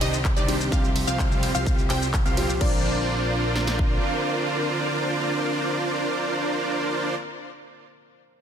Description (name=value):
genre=EDM, festival progressive house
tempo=127 BPM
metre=4/4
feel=straight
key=Bb major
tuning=A4 = 440 Hz
part: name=warm grand piano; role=accompaniment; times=0.0-8.4 s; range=Bb2 to D5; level=-33 LUFS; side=left 2 dB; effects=sidechain pumping, ping-pong delay
part: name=clear symphonic string section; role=sustained chords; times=0.0-7.2 s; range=D3 to D5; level=-31 LUFS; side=right 1 dB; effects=sidechain pumping
part: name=wide unison pluck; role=arpeggios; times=0.0-7.2 s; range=D5 to G5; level=-32 LUFS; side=equal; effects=sidechain pumping, ping-pong delay
part: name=dense compressed supersaw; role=riff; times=0.0-7.2 s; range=C4 to G5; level=-26 LUFS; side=right 1 dB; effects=sidechain pumping, ping-pong delay
part: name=fat analog bass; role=bass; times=0.0-4.0 s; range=Bb1 to C2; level=-28 LUFS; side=equal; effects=tube saturation, sidechain pumping
part: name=big-room dance drum kit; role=drums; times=0.0-2.7 s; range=crash cymbal, handclaps, hi-hat, ride cymbal, shaker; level=-31 LUFS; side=left 1 dB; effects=studio reverb
part: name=big-room dance drum kit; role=drums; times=0.2-3.9 s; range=kick drum, snare drum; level=-24 LUFS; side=equal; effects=studio reverb
room=light reverb, digital ambience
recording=dense, heavily limited modern master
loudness=-21 LUFS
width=side -8 dB against mid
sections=0.0-2.6 A section; 2.6-6.4 B section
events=drop 0.0-2.6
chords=0.0 Cmadd9; 0.7 Fsus2/C; 2.6 Bbadd9